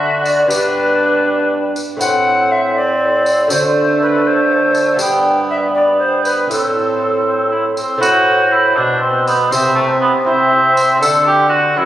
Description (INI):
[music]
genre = classical, renaissance-style consort dance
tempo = 80 BPM (dotted quarters)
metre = 6/8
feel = straight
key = A dorian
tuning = A4 = 441 Hz
[part]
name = alto recorder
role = melody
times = 0.0-11.9 s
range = A4 to G5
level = -16 LUFS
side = left 1 dB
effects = none
[part]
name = warm cor anglais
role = second line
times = 0.0-11.9 s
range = A3 to A4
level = -16 LUFS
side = right 1 dB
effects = none
[part]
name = lute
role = accompaniment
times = 0.0-11.9 s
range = F#2 to C5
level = -22 LUFS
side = right 3 dB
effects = none
[part]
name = warm bassoon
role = bass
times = 0.0-11.9 s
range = F#2 to D3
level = -19 LUFS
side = equal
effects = none
[part]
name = tambourine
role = percussion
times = 0.3-11.3 s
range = none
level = -26 LUFS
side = left 1 dB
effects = none
[sound]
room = wet church reverb, RT60 3.2 s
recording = recorded on a phone in the room, club reverb, compression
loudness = -12 LUFS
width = side -12 dB against mid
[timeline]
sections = 0.0-8.0 A section; 8.0-11.9 A section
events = none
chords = 0.5 G; 2.0 Am; 3.5 D; 5.0 G; 6.5 Am; 9.5 C; 11.0 D